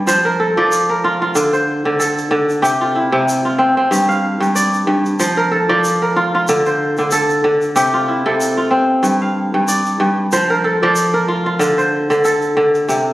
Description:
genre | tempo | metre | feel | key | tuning
west african traditional, West African string and xylophone music | 94 BPM | 4/4 | swing 56% on 16ths | F major | A4 = 439 Hz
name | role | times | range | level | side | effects
kora | arpeggios | 0.0-13.1 s | G2 to F5 | -13 LUFS | equal | none
egg shaker | percussion | 0.1-13.1 s | none | -26 LUFS | equal | none
room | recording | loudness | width
wet recital hall reverb, RT60 1.5 s | recorded on a phone in the room, studio reverb, compression | -13 LUFS | side -16 dB against mid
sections
0.1-13.1 A section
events
none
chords
0.1 F; 1.4 Dm; 2.6 C; 3.9 G5; 5.2 F; 6.5 Dm; 7.8 C; 9.0 G5; 10.3 F; 11.6 Dm

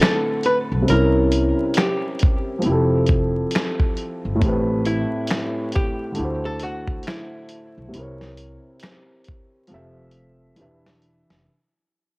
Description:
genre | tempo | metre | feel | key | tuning
lo-fi hip hop | 68 BPM | 4/4 | swing 60% on 16ths | unclear | A4 = 440 Hz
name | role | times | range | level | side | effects
archtop guitar, miked and amplified | melody | 0.0-10.6 s | E4 to B4 | -26 LUFS | equal | low-pass filter, analog delay
dark upright piano | accompaniment | 0.0-11.5 s | A2 to E5 | -22 LUFS | equal | cassette tape, low-pass filter
dusty soul sampler-style drum kit | drums | 0.0-11.5 s | finger snaps, hi-hat, kick drum, snare drum | -21 LUFS | equal | cassette tape
upright bass | bass | 0.7-11.5 s | E1 to D2 | -23 LUFS | equal | transformer saturation
room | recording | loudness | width
moderate spring reverb, RT60 2.2 s | home recording on cassette, vinyl crackle | -18 LUFS | side -28 dB against mid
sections
0.0-11.5 A section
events
fade-out 0.0-11.5; drum fill 9.7-11.5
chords
0.0 D9; 0.9 C7b9; 2.6 Fmaj9; 4.4 Am9; 6.2 D9; 7.9 C7b9; 9.7 Fmaj9; 10.6 Em7

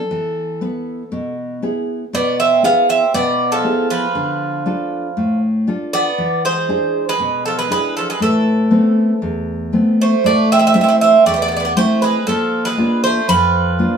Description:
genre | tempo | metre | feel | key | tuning
greek folk, Greek bouzouki band | 118 BPM | 4/4 | straight | A harmonic minor | A4 = 440 Hz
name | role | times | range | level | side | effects
Greek bouzouki | melody | 0.0-14.0 s | A4 to F5 | -16 LUFS | right 3 dB | none
nylon-string guitar | accompaniment | 0.1-14.0 s | E2 to B4 | -18 LUFS | left 1 dB | none
Greek bouzouki | second line | 2.1-14.0 s | E3 to C4 | -22 LUFS | right 2 dB | none
room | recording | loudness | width
wet studio reverb, RT60 0.6 s | band playing live in one room, small room ambience | -14 LUFS | side -7 dB against mid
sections
0.0-10.2 A section; 10.2-14.0 B section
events
none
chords
0.1 E; 4.2 Dm; 6.2 E7; 8.2 Amadd9; 10.2 Am; 12.3 Bb

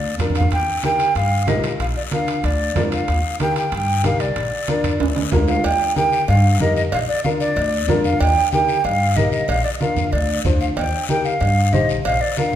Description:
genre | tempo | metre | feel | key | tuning
latin, cumbia | 187 BPM | 4/4 | straight | Eb major | A4 = 444 Hz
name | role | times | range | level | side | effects
breathy mellow jazz flute | melody | 0.0-12.6 s | D5 to G5 | -20 LUFS | right 1 dB | none
upright bass | bass | 0.0-12.2 s | Bb1 to G2 | -21 LUFS | equal | none
warm upright piano | accompaniment | 0.2-12.6 s | D4 to C5 | -24 LUFS | left 3 dB | none
congas | percussion | 0.2-12.5 s | none | -25 LUFS | right 2 dB | none
guiro | percussion | 0.2-12.6 s | none | -32 LUFS | left 7 dB | none
timbales and cowbell | percussion | 0.2-12.2 s | none | -28 LUFS | right 6 dB | none
room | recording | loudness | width
wet recital hall reverb, RT60 1.4 s | minimal, uncompressed stereo recording | -16 LUFS | side -10 dB against mid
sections
0.0-5.6 A section; 5.6-12.6 A section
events
drum fill 0.0-0.5, 5.0-5.6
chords
0.0 Bb; 0.5 Eb; 1.8 Bb; 3.1 Eb; 4.4 Bb; 5.6 Eb; 6.9 Bb; 8.2 Eb; 9.5 Bb; 10.8 Eb

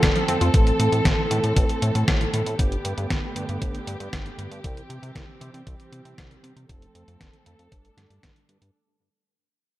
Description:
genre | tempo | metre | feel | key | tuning
italo disco | 117 BPM | 4/4 | straight | unclear | A4 = 440 Hz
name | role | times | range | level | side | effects
dark symphonic string section | sustained chords | 0.0-8.7 s | D3 to A4 | -27 LUFS | right 1 dB | low-pass filter
analog pluck | arpeggios | 0.0-0.5 s | F3 to F4 | -30 LUFS | left 1 dB | chorus, digital delay
chorused synth bass | bass | 0.0-8.7 s | F1 to C3 | -26 LUFS | equal | none
detuned 8-bit digital drum machine | drums | 0.0-8.7 s | hi-hat, snare drum | -27 LUFS | equal | gated reverb
electronic kick drum | drums | 0.0-8.3 s | none | -23 LUFS | equal | none
room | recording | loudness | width
moderate plate reverb, RT60 2.0 s | none | -20 LUFS | side -15 dB against mid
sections
0.0-8.7 A section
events
fade-out 0.0-8.7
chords
0.0 F; 0.5 Am; 2.6 Gadd9; 4.6 C; 6.7 F; 7.7 Gsus2

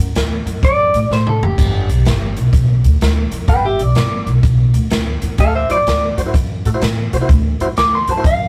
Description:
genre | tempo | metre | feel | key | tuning
electric blues shuffle | 126 BPM | 4/4 | swing 65% on 8ths | D mixolydian | A4 = 440 Hz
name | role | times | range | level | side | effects
upright bass | bass | 0.0-8.5 s | F#1 to C3 | -18 LUFS | equal | none
swinging big-band drum kit | drums | 0.2-8.4 s | crash cymbal, hi-hat, kick drum, snare drum, toms | -20 LUFS | equal | none
clean electric guitar | melody | 0.6-8.5 s | G4 to D6 | -19 LUFS | equal | none
tonewheel organ | accompaniment | 5.7-8.3 s | E4 to C5 | -24 LUFS | equal | slow rotary speaker, overdrive
room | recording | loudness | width
moderate small room ambience, RT60 0.5 s | rough rehearsal-room recording | -15 LUFS | mono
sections
0.0-8.5 A section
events
drum fill 1.1-1.6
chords
0.0 D; 1.6 G; 5.4 D7

